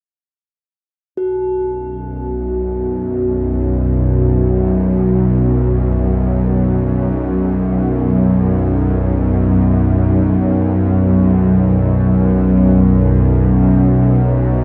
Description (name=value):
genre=dark ambient drone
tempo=free time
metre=none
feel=none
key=unclear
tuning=A4 = 442 Hz
part: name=bowed-like drone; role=drone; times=1.7-14.6 s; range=B1 to F#2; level=-15 LUFS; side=equal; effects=built-in reverb
part: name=quartz singing bowl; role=texture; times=1.2-14.6 s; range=F#4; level=-27 LUFS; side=equal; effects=none
room=wet huge ambient reverb, RT60 7.4 s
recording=nothing above 7.7 kHz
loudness=-15 LUFS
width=mono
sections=1.2-14.6 A section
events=none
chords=1.2 B5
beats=free time